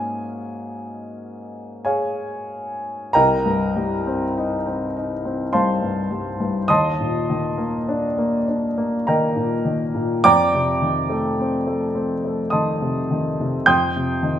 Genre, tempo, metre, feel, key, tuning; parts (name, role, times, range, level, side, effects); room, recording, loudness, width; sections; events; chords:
classical, impressionist solo piano; 51 BPM; 3/4; uneven beats, rubato; C dorian from 3.1 s; A4 = 440 Hz
warm grand piano; solo; 0.0-14.4 s; C2 to G6; -19 LUFS; equal
wet recital hall reverb, RT60 1.5 s; -18 LUFS; side -10 dB against mid
0.0-3.1 A section; 3.1-14.4 B section
0.0 G#9sus4; 3.1 Cm7; 6.7 Ebmaj7; 10.2 F9; 13.7 Cm/F